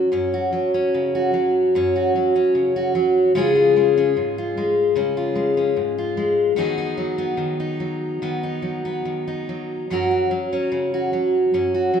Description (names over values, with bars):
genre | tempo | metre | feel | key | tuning
folk, solo fingerstyle acoustic guitar | 74 BPM | 4/4 | rubato | F# major | A4 = 440 Hz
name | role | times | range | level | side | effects
fingerpicked steel-string acoustic guitar | solo | 0.0-12.0 s | F#2 to A#4 | -18 LUFS | left 1 dB | none
room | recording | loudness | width
moderate recital hall reverb, RT60 1.4 s | minimal, uncompressed stereo recording | -18 LUFS | side -7 dB against mid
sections
0.0-12.0 A section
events
none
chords
0.0 F#5; 3.3 C#; 6.6 B6/D#; 9.9 F#